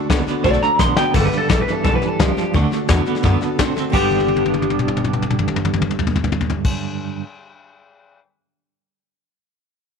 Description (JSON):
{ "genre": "rockabilly", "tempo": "172 BPM", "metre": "4/4", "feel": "straight", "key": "G major", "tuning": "A4 = 440 Hz", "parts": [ { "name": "picked steel-string acoustic guitar", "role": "accompaniment", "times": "0.0-7.2 s", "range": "G2 to A4", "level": "-25 LUFS", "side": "left 12 dB", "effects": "none" }, { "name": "clean electric guitar", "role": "riff", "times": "0.0-7.2 s", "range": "G2 to D4", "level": "-22 LUFS", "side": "right 12 dB", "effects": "tremolo" }, { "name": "upright bass", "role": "bass", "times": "0.1-6.7 s", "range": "G1 to A2", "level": "-23 LUFS", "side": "equal", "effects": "none" }, { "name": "soft brush drum kit", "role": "drums", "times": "0.1-8.2 s", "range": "crash cymbal, hi-hat, kick drum, snare drum, toms", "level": "-21 LUFS", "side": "left 4 dB", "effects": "none" }, { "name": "electric guitar through a small old amp", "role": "melody", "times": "0.4-6.7 s", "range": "G4 to C6", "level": "-20 LUFS", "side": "left 1 dB", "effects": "tape echo" } ], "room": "light reverb", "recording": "1960s-style stereo with parts hard left and right", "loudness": "-16 LUFS", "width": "side -6 dB against mid", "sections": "0.0-1.1 A section; 1.1-3.9 B section; 3.9-6.7 C section", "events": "drum fill 0.8-1.1, 4.1-6.7", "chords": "0.0 D; 1.1 G; 2.5 D; 3.9 G" }